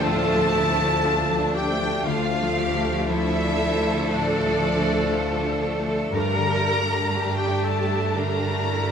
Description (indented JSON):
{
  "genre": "cinematic, emotional film score for orchestra",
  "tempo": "59 BPM",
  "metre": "4/4",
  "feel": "rubato",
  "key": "D minor",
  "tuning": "A4 = 440 Hz",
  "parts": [
    { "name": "dark studio violin section", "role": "melody", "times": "0.0-8.9 s", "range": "D5 to Bb5", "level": "-29 LUFS", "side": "left 1 dB", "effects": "none" },
    { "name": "mellow clarinet", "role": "second line", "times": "0.0-8.9 s", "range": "D4 to Bb4", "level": "-30 LUFS", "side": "left 2 dB", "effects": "none" },
    { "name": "rich symphonic violin section", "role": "second line", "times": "0.0-8.9 s", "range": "A3 to D4", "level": "-31 LUFS", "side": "left 2 dB", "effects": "none" },
    { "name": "small flute group", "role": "second line", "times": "0.0-8.9 s", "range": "D5 to Bb5", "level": "-30 LUFS", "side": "left 3 dB", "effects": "none" },
    { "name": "clear grand piano", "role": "accompaniment", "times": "0.0-8.9 s", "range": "D2 to G4", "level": "-29 LUFS", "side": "left 1 dB", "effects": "none" },
    { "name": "warm symphonic viola section", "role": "accompaniment", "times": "0.0-8.9 s", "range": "D3 to G3", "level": "-29 LUFS", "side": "right 3 dB", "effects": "none" },
    { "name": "dark French horn section", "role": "sustained chords", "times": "0.0-8.9 s", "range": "F3 to A4", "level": "-31 LUFS", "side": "left 4 dB", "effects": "none" },
    { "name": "concert harp", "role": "arpeggios", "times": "0.0-8.9 s", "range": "G2 to G5", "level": "-36 LUFS", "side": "left 8 dB", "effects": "none" },
    { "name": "rich symphonic cello section", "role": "bass", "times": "0.0-8.9 s", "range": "D4 to Bb4", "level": "-31 LUFS", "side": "right 2 dB", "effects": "none" },
    { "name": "warm symphonic double bass section", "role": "bass", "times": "0.0-8.9 s", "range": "D2 to G2", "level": "-28 LUFS", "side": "right 3 dB", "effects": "none" }
  ],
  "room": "moderate scoring stage reverb, RT60 2.0 s",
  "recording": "none",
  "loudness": "-20 LUFS",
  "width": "side -7 dB against mid",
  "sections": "0.0-8.9 A section",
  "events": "none",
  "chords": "0.0 Dm; 6.1 Gmadd9"
}